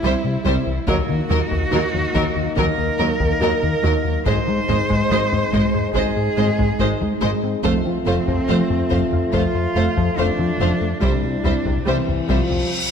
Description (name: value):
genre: cinematic, hybrid orchestral and electronic film score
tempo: 71 BPM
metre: 4/4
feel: straight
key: unclear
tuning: A4 = 441 Hz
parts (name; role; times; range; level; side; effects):
- rich cello; melody; 0.0-12.7 s; C4 to C5; -25 LUFS; right 3 dB; tape echo
- rich studio violin section; second line; 0.0-12.4 s; Bb4 to C5; -28 LUFS; left 2 dB; none
- rich symphonic viola section; accompaniment; 0.0-12.4 s; Gb3 to A3; -27 LUFS; right 2 dB; none
- glassy wavetable pluck; arpeggios; 0.0-12.6 s; C3 to Ab4; -28 LUFS; left 2 dB; none
- smooth gliding synth bass; riff; 0.0-12.6 s; C2 to Ab3; -24 LUFS; left 2 dB; none
- rich symphonic double bass section; bass; 0.0-12.4 s; F1 to Eb2; -28 LUFS; right 4 dB; none
- warm symphonic cello section; bass; 0.0-12.4 s; C2 to Ab2; -27 LUFS; right 4 dB; none
- rich symphonic violin section; melody; 0.1-12.4 s; Eb5 to F5; -33 LUFS; left 5 dB; none
- dark French horn section; sustained chords; 0.9-12.7 s; E3 to F4; -26 LUFS; left 3 dB; none
- taiko ensemble; drums; 0.9-12.7 s; none; -27 LUFS; equal; none
- cymbal swell; sound effects; 12.2-12.9 s; none; -26 LUFS; left 1 dB; none
room: moderate scoring stage reverb, RT60 1.9 s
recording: none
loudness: -17 LUFS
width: side -7 dB against mid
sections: 0.0-12.9 A section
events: cymbal swell 12.2-12.9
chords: 0.0 C; 0.9 Ebm; 4.3 Ab; 7.6 F; 11.0 C